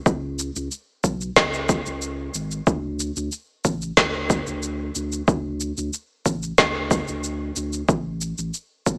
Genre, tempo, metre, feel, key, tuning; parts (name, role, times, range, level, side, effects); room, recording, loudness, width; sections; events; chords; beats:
sunset chillout; 92 BPM; 4/4; straight; A4 = 440 Hz
warm sub bass; bass; 0.1-9.0 s; F#1 to D2; -33 LUFS; equal
electronic kick drum; drums; 0.1-9.0 s; -27 LUFS; equal; small room ambience
electronic shaker and snare drum; drums; 0.1-9.0 s; -24 LUFS; equal; small room ambience
light reverb; small speaker sound; -24 LUFS; mono
0.0-9.0 A section
| 0.06 0.71 1.36 2.02 | 2.67 3.32 3.97 4.62 | 5.28 5.93 6.58 7.23 | 7.88 8.54